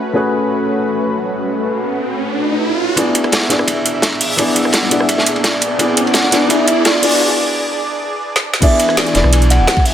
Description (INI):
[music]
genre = liquid drum and bass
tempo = 170 BPM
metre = 4/4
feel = straight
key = unclear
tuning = A4 = 440 Hz
[part]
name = dark concert grand piano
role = accompaniment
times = 0.0-9.9 s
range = A3 to D5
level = -18 LUFS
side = left 1 dB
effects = dub echo
[part]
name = lush unison pad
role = sustained chords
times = 0.0-9.9 s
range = E3 to G#5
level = -21 LUFS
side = equal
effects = chorus, sidechain pumping
[part]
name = riser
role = sound effects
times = 1.2-7.2 s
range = none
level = -21 LUFS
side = right 2 dB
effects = none
[part]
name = hollow clarinet-like synth lead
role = melody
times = 3.0-9.9 s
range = D5 to F#5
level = -21 LUFS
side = equal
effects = chorus, dub echo
[part]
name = crunchy breakbeat drum kit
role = drums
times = 3.0-9.9 s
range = hi-hat, ride cymbal, snare drum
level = -18 LUFS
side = equal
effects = high-pass filter on cymbals, high-pass filter on hats, high-pass filter on snare, high-pass filter on room
[part]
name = electronic kick drum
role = drums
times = 3.0-9.8 s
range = none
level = -17 LUFS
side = equal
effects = overdrive, high-pass filter on kick
[part]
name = garage drum kit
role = drums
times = 3.0-9.9 s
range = crash cymbal, hi-hat, rim click, snare drum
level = -17 LUFS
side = right 2 dB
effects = overdrive, high-pass filter on hats, low-pass filter on hats, high-pass filter on snare, low-pass filter on snare, high-pass filter on cymbals, low-pass filter on cymbals
[part]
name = sub bass with octave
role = bass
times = 9.1-9.7 s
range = D1 to B1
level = -12 LUFS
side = equal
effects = none
[sound]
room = moderate plate reverb, RT60 2.2 s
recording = high-pass filter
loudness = -12 LUFS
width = side -10 dB against mid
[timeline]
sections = 0.0-3.0 A section; 3.0-8.6 B section; 8.6-9.9 C section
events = riser 1.2-3.0, 3.0-7.2; build-up 3.0-8.6; filter sweep on soft synth lead 3.0-8.6; drum fill 5.8-7.2, 8.4; break 7.2-8.6; drop 8.6-9.9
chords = 0.0 Amaj13; 3.0 E7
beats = | 0.15 0.50 0.85 1.21 | 1.56 1.91 2.27 2.62 | 2.97 3.33 3.68 4.03 | 4.38 4.74 5.09 5.44 | 5.80 6.15 6.50 6.86 | 7.21 7.56 7.91 8.27 | 8.62 8.97 9.33 9.68